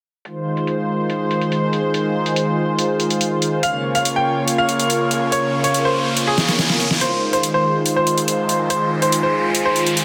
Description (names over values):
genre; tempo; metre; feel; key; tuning
heavy wobble dubstep; 142 BPM; 4/4; half-time; F minor; A4 = 440 Hz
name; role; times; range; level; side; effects
lush unison pad; sustained chords; 0.2-10.0 s; Db3 to Db5; -22 LUFS; equal; chorus
warbly tape-like pad; texture; 1.4-10.0 s; F4 to Db6; -29 LUFS; equal; chorus, built-in reverb
dubstep drum kit; drums; 0.3-10.0 s; hi-hat, snare drum; -24 LUFS; equal; overdrive, low-pass filter on hats, small room ambience, low-pass filter on snare
bright concert grand piano; melody; 3.6-10.0 s; Ab4 to G5; -22 LUFS; equal; low-pass filter, delay
riser; sound effects; 4.4-10.0 s; none; -28 LUFS; equal; none
room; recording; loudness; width
moderate lush hall reverb, RT60 2.0 s; dense, heavily limited modern master; -19 LUFS; mono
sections
0.3-7.0 A section; 7.0-10.0 B section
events
fade-in on ambient pad 0.3-7.0; filter sweep on drum 0.3-7.0; riser 4.4-7.0, 7.0-10.0; drum fill 6.4-7.0; build-up 7.0-10.0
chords
0.3 Fm7; 3.6 Bbm; 7.0 Fm7